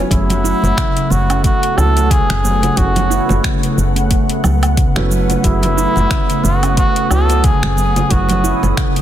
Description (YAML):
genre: organic downtempo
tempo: 90 BPM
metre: 4/4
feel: swing 57% on 16ths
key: F# dorian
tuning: A4 = 439 Hz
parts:
  - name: felt-muted upright piano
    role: accompaniment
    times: 0.0-9.0 s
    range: F#3 to C#5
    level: -25 LUFS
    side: right 4 dB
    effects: sidechain pumping, digital delay
  - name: warm analog pad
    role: sustained chords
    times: 0.0-9.0 s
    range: A3 to D#6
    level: -24 LUFS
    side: left 1 dB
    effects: wide subtle chorus, sidechain pumping
  - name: woody FM bass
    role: bass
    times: 0.0-8.7 s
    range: F#1 to C#2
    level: -16 LUFS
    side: equal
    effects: sidechain pumping
  - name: trumpet with cup mute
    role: melody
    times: 0.1-8.8 s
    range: E4 to A4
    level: -19 LUFS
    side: equal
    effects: vintage 12-bit sampler grit, digital delay
  - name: handpan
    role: arpeggios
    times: 0.1-9.0 s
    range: C#3 to E4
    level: -20 LUFS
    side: right 1 dB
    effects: digital delay
  - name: afro-pop drum kit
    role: drums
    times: 0.1-9.0 s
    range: cabasa, finger snaps, hi-hat, woodblock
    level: -23 LUFS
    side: right 1 dB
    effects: soft clipping on snare
  - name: electronic kick drum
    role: drums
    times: 0.1-8.9 s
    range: none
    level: -16 LUFS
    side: equal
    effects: none
  - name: wind-like tuned noise texture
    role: texture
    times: 0.9-9.0 s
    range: B3 to B4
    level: -29 LUFS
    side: left 3 dB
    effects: built-in reverb
  - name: congas and bongos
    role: percussion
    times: 0.3-8.7 s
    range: none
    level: -25 LUFS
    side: right 3 dB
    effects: none
room: small room ambience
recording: dense, heavily limited modern master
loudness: -12 LUFS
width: side -11 dB against mid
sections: 0.0-9.0 A section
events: none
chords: 0.1 F#m7